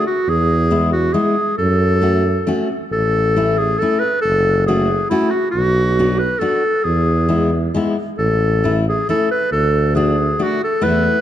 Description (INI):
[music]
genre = alpine folk, alpine dance band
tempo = 137 BPM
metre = 3/4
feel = rubato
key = A major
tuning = A4 = 440 Hz
[part]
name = clear clarinet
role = melody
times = 0.0-11.2 s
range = E4 to B4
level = -17 LUFS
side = equal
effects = tape echo
[part]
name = fingerpicked steel-string acoustic guitar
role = accompaniment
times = 0.0-11.2 s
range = G#3 to F#4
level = -21 LUFS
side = left 2 dB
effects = none
[part]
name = mellow tuba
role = bass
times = 0.3-11.1 s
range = F#1 to F#2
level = -18 LUFS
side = right 1 dB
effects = none
[sound]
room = light reverb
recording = dark, warm production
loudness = -14 LUFS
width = side -11 dB against mid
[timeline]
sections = 0.0-11.2 A section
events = none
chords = 0.3 E; 1.6 F#m; 2.9 A; 4.2 F#m; 5.5 Bm; 6.9 E; 8.2 A; 9.5 D